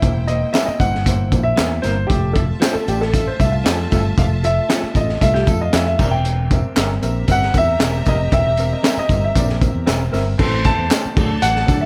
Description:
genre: uptempo 1960s-style soul.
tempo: 116 BPM.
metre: 4/4.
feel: straight.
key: C mixolydian.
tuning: A4 = 440 Hz.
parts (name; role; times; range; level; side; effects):
warm grand piano; melody; 0.0-11.9 s; G4 to A5; -23 LUFS; equal; none.
clear symphonic string section; second line; 0.0-11.9 s; E4 to C6; -34 LUFS; equal; none.
warm upright piano; accompaniment; 0.0-11.9 s; E3 to G5; -28 LUFS; equal; none.
fingered electric bass; bass; 0.0-11.9 s; E1 to D3; -23 LUFS; equal; none.
crunchy breakbeat drum kit; drums; 0.0-11.8 s; crash cymbal, hi-hat, kick drum, snare drum; -21 LUFS; equal; none.
tambourine and handclaps; percussion; 0.0-11.8 s; none; -32 LUFS; equal; none.
electric guitar through a small old amp; stabs; 0.5-10.2 s; F3 to Bb4; -32 LUFS; equal; none.
electric guitar through a small old amp; riff; 5.3-6.0 s; F4 to A4; -29 LUFS; equal; none.
room: light reverb.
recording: none.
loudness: -17 LUFS.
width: mono.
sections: 0.0-10.4 A section; 10.4-11.9 B section.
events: grand piano solo 0.0-10.4.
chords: 0.0 C7/E; 2.1 Fmaj7; 6.0 C7/E; 10.4 Am; 11.2 D.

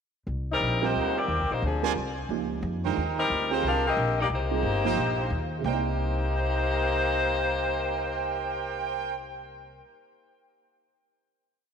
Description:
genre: jazz, big band swing.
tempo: 179 BPM.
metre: 4/4.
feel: swing 62% on 8ths.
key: C minor.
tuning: A4 = 445 Hz.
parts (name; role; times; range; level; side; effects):
upright bass; bass; 0.3-9.8 s; G1 to F2; -31 LUFS; equal; none.
warm saxophone section; melody; 0.5-9.1 s; F3 to F5; -28 LUFS; left 3 dB; none.
dark baby grand piano; accompaniment; 0.8-9.9 s; C3 to D5; -33 LUFS; right 9 dB; none.
bright trumpet section; stabs; 0.8-9.1 s; Eb4 to Ab5; -33 LUFS; right 6 dB; none.
room: moderate plate reverb, RT60 2.9 s.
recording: 1960s-style stereo.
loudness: -25 LUFS.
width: side -7 dB against mid.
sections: 0.3-5.6 A section; 5.6-8.3 final chord.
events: none.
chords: 0.3 Cm7; 1.6 Dm7b5; 2.3 Db; 3.0 Cm7.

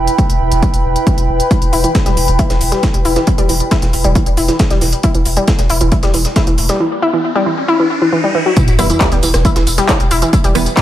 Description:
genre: driving peak-time techno.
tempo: 136 BPM.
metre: 4/4.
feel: straight.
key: E minor.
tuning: A4 = 441 Hz.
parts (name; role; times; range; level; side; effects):
saturated sub bass; bass; 0.0-10.7 s; E1; -17 LUFS; equal; overdrive, sidechain pumping, low-pass filter.
warbly tape-like pad; texture; 0.0-6.8 s; E4 to B5; -20 LUFS; equal; chorus, built-in reverb, sidechain pumping.
techno drum kit; drums; 0.1-10.8 s; handclaps, hi-hat, rim click, tambourine; -20 LUFS; equal; overdrive, sidechain pumping on hats, studio reverb, sidechain pumping on perc.
electronic kick drum; drums; 0.2-10.8 s; none; -14 LUFS; equal; overdrive, studio reverb.
analog pluck; riff; 1.5-10.8 s; E3 to E4; -16 LUFS; left 1 dB; chorus, overdrive, sidechain pumping, tape echo.
breakbeat sampler-style drum kit; drums; 1.5-10.8 s; hi-hat, snare drum; -26 LUFS; equal; sidechain pumping on hats, high-pass filter on hats, studio reverb, high-pass filter on snare.
riser and sub drop; sound effects; 6.3-10.3 s; none; -21 LUFS; left 1 dB; none.
filtered dub chord stab; stabs; 8.8-10.8 s; E3 to B3; -20 LUFS; right 3 dB; phaser, sidechain pumping, dub echo.
room: light reverb.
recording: echo-heavy mix.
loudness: -11 LUFS.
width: side -12 dB against mid.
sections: 0.0-8.6 A section; 8.6-10.8 B section.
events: riser 6.3-8.6; drop 8.6-10.8; impact 8.6-10.3.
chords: 0.0 Em.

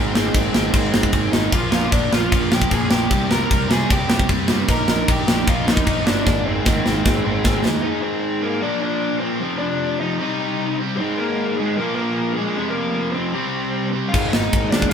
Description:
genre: punk rock.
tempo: 152 BPM.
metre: 4/4.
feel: straight.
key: unclear.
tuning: A4 = 440 Hz.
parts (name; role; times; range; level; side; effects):
bluesy overdriven lead guitar; melody; 0.0-14.9 s; Ab3 to Bb5; -24 LUFS; left 2 dB; distortion.
distorted electric guitar; riff; 0.0-14.9 s; F2 to Eb4; -25 LUFS; left 4 dB; distortion.
distorted electric guitar; riff; 0.0-14.9 s; F2 to Eb4; -25 LUFS; right 6 dB; distortion.
fuzz picked electric bass; bass; 0.0-7.8, 14.1-14.9 s; G1 to G2; -25 LUFS; equal; overdrive.
tight metal drum kit; drums; 0.2-7.7, 14.1-14.9 s; crash cymbal, kick drum, ride cymbal, snare drum; -19 LUFS; equal; none.
room: light reverb.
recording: band playing live in one room.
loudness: -17 LUFS.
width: side -7 dB against mid.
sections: 0.0-7.8 A section; 7.8-14.9 B section.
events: drum fill 6.3-7.8.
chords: 0.0 Ab; 1.5 Bb; 3.1 C5; 4.7 Eb/Bb; 6.3 Ab; 8.6 Bb; 9.4 F5; 10.2 Cm; 11.0 Ab; 11.8 Bb5; 12.6 Fm; 13.3 C5; 14.1 Ab5.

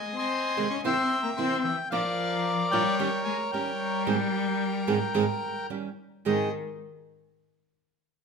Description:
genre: tango.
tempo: 112 BPM.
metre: 4/4.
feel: rubato.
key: Ab major.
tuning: A4 = 440 Hz.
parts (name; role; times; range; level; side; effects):
bandoneon; melody; 0.0-6.5 s; Bb4 to Db6; -28 LUFS; left 1 dB; none.
warm cello; second line; 0.0-6.5 s; Eb3 to Db4; -32 LUFS; left 4 dB; none.
nylon-string guitar; accompaniment; 0.6-6.5 s; Ab2 to Ab4; -29 LUFS; right 6 dB; none.
room: moderate large studio reverb, RT60 1.2 s.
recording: minimal, uncompressed stereo recording.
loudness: -25 LUFS.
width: side -5 dB against mid.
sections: 0.0-6.3 A section; 6.3-8.2 B section.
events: none.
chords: 0.0 Ab; 0.9 C7; 1.9 Bb; 3.0 Eb7; 4.1 Ab; 5.7 Eb7; 6.3 Ab.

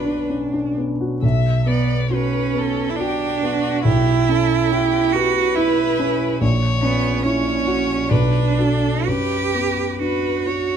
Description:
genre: classical, slow romantic movement for piano trio.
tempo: 69 BPM.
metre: 3/4.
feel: uneven beats, rubato.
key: B minor.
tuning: A4 = 441 Hz.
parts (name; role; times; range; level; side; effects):
rich violin; melody; 0.0-10.8 s; F#4 to E5; -26 LUFS; left 8 dB; none.
clear cello; second line; 0.0-10.8 s; B3 to G4; -21 LUFS; right 9 dB; none.
dark concert grand piano; accompaniment; 0.0-10.8 s; A#1 to B4; -20 LUFS; equal; none.
room: light reverb.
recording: close, detailed microphones.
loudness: -17 LUFS.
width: side -8 dB against mid.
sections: 0.0-1.2 A section; 1.2-10.8 B section.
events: none.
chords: 0.0 Bm; 3.9 C#m7b5/B; 6.4 F#7/A#; 8.1 Bm; 9.1 Bm/F#.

